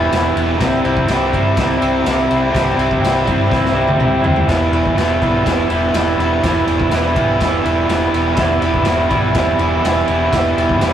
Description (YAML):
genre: garage rock duo or trio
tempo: 124 BPM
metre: 4/4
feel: straight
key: E minor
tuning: A4 = 440 Hz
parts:
  - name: raw garage guitar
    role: riff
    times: 0.0-10.9 s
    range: C3 to E4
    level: -14 LUFS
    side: right 1 dB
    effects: overdrive
  - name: hollow-body short-scale fingered electric bass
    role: bass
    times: 0.0-10.9 s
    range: E1 to G2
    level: -22 LUFS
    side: left 1 dB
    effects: none
  - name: raw garage drum kit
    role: drums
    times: 0.1-10.9 s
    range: kick drum, ride cymbal, snare drum, toms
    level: -20 LUFS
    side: left 1 dB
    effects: none
room: moderate booth ambience, RT60 0.2 s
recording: rough rehearsal-room recording, tube saturation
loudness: -13 LUFS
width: side -10 dB against mid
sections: 0.0-10.9 A section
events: drum fill 3.5-4.5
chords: 0.0 Em; 0.6 C; 4.5 Em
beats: 0.11 | 0.60 1.08 1.57 2.05 | 2.54 3.02 3.51 3.99 | 4.48 4.96 5.45 5.93 | 6.42 6.91 7.39 7.88 | 8.37 8.86 9.34 9.83 | 10.32 10.81